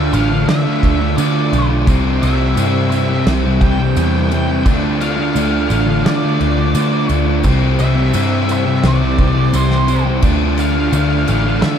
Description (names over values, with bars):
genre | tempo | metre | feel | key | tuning
rock, shoegaze and dream pop | 86 BPM | 4/4 | straight | C major | A4 = 440 Hz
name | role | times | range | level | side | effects
octave-fuzz lead guitar | melody | 0.0-11.8 s | C5 to G5 | -24 LUFS | equal | distortion, ping-pong delay
biting overdriven guitar | riff | 0.0-11.8 s | C3 to D4 | -24 LUFS | equal | none
crunchy overdriven guitar | riff | 0.0-11.8 s | C3 to F4 | -20 LUFS | right 10 dB | reverse reverb
thick fuzz guitar | riff | 0.0-11.8 s | C3 to D4 | -19 LUFS | left 7 dB | distortion, wide subtle chorus
vintage muted picked electric bass | bass | 0.0-11.8 s | A1 to D3 | -17 LUFS | equal | none
loose indie drum kit | drums | 0.1-11.8 s | crash cymbal, kick drum, snare drum | -21 LUFS | equal | none
tambourine | percussion | 0.1-11.4 s | none | -36 LUFS | right 15 dB | none
room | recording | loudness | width
light reverb, small room ambience | none | -12 LUFS | side -8 dB against mid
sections
0.0-11.8 A section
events
none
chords
0.0 Dm; 1.9 C; 4.7 Dm; 7.4 C; 10.2 Dm